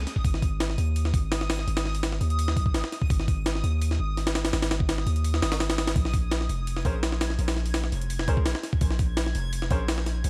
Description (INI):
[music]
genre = drum and bass, jungle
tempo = 168 BPM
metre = 4/4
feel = straight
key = unclear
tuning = A4 = 440 Hz
[part]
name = long sustained 808-style bass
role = bass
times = 0.0-10.3 s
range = F1 to Eb2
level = -29 LUFS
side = equal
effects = none
[part]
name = backwards swelling texture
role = texture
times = 0.0-10.3 s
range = Eb6 to Ab6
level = -41 LUFS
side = equal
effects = built-in reverb
[part]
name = breakbeat sampler-style drum kit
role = drums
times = 0.1-10.3 s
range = hi-hat, kick drum, snare drum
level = -29 LUFS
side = equal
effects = studio reverb
[part]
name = bright concert grand piano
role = stabs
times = 6.9-9.8 s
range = Db4 to C5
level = -39 LUFS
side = equal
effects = dub echo
[sound]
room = little or no reverb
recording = vinyl crackle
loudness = -26 LUFS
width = mono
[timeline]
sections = 0.0-10.3 A section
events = kick drops out 5.2-6.0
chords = 0.2 Ab5; 6.0 Bb7(no3)